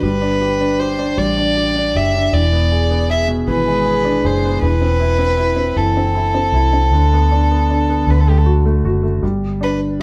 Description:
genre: six-eight pop ballad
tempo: 52 BPM (dotted quarters)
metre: 6/8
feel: straight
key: G major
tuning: A4 = 440 Hz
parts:
  - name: warm violin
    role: melody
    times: 0.0-9.8 s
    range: G4 to E5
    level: -21 LUFS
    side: equal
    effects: none
  - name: clear grand piano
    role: accompaniment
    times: 0.0-10.0 s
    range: B2 to G#4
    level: -21 LUFS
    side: equal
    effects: none
  - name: vintage muted fingered electric bass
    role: bass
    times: 0.0-10.0 s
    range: E1 to D2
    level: -20 LUFS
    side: equal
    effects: none
room: wet stone room reverb, RT60 1.0 s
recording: band playing live in one room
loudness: -16 LUFS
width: mono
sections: 0.0-9.2 A section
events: none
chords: 0.0 Gadd9; 2.3 E7; 4.6 Am/E; 6.9 Bm7/D; 8.1 D; 9.2 G5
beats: | 0.03 1.18 | 2.33 3.48 | 4.62 5.76 | 6.91 8.07 | 9.23

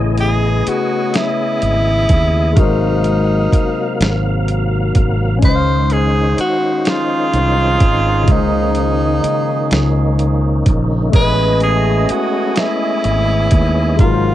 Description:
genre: slow six-eight R&B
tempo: 42 BPM (dotted quarters)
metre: 6/8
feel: straight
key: Db major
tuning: A4 = 439 Hz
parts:
  - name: barky tine electric piano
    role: accompaniment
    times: 0.0-14.3 s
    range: Db3 to F5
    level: -21 LUFS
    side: left 9 dB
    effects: overdrive, phaser
  - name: tonewheel organ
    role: sustained chords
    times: 0.0-14.3 s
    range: C3 to F5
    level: -22 LUFS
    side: right 1 dB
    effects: chorus vibrato, fast rotary speaker
  - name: mellow fretless electric bass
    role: bass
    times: 0.0-14.3 s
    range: G#1 to D#2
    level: -16 LUFS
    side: right 1 dB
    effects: transformer saturation
  - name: breathy tenor saxophone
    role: melody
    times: 0.2-14.3 s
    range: Eb4 to C5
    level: -18 LUFS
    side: equal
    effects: cassette tape
  - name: dusty soul sampler-style drum kit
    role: drums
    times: 0.2-14.2 s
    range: hi-hat, kick drum, snare drum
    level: -14 LUFS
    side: right 1 dB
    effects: cassette tape
  - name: warm horn section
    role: stabs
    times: 6.8-14.3 s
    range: E3 to D#5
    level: -24 LUFS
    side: right 12 dB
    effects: none
room: little or no reverb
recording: home recording on cassette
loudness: -12 LUFS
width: side -13 dB against mid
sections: 0.0-14.3 A section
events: drum fill 14.0-14.3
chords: 0.0 Amaj9#11; 2.6 Ab13; 5.4 Dbmaj9; 11.1 Amaj9#11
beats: 1.14 | 2.56 3.99 | 5.42 6.85 | 8.28 9.71 | 11.13 12.56 | 13.99

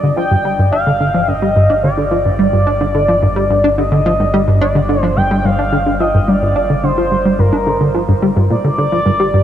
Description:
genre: ambient, sequencer-driven space music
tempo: 108 BPM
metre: 4/4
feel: straight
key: G minor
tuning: A4 = 440 Hz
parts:
  - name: expressive synth lead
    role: melody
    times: 0.0-9.4 s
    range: Bb4 to G5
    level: -16 LUFS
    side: equal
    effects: analog chorus, tape echo
  - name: plucky analog bass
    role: riff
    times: 0.0-9.4 s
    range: G2 to D4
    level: -14 LUFS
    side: equal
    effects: wide subtle chorus, tape echo
  - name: analog drone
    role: bass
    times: 0.0-9.4 s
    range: G1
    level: -22 LUFS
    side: equal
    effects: chorus
room: wet huge ambient reverb, RT60 8.3 s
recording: none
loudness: -11 LUFS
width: side -10 dB against mid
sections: 0.0-9.4 A section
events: none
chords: 0.0 G5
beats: 0.17 0.73 1.28 | 1.84 2.39 2.95 3.50 | 4.06 4.62 5.17 5.73 | 6.28 6.84 7.39 7.95 | 8.50 9.06

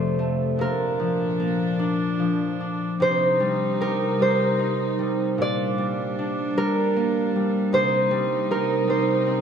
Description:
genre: children's music, lullaby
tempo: 50 BPM (dotted quarters)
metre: 6/8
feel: rubato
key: unclear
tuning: A4 = 440 Hz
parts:
  - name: concert harp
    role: melody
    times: 0.0-9.4 s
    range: Bb4 to D5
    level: -24 LUFS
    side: right 2 dB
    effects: none
  - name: concert harp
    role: accompaniment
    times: 0.0-9.4 s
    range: F2 to G4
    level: -24 LUFS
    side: left 1 dB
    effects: none
  - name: rich chamber string section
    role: sustained chords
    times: 0.0-9.4 s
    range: F2 to Eb4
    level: -31 LUFS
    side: equal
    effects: none
room: light reverb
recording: band playing live in one room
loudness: -20 LUFS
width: side -7 dB against mid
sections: 0.0-3.0 A section; 3.0-9.4 B section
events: none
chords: 0.0 F; 0.6 Bb; 3.0 Cm; 5.4 Gm/Bb; 7.7 Cm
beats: | 0.59 1.80 | 3.00 4.20 | 5.39 6.57 | 7.73 8.89

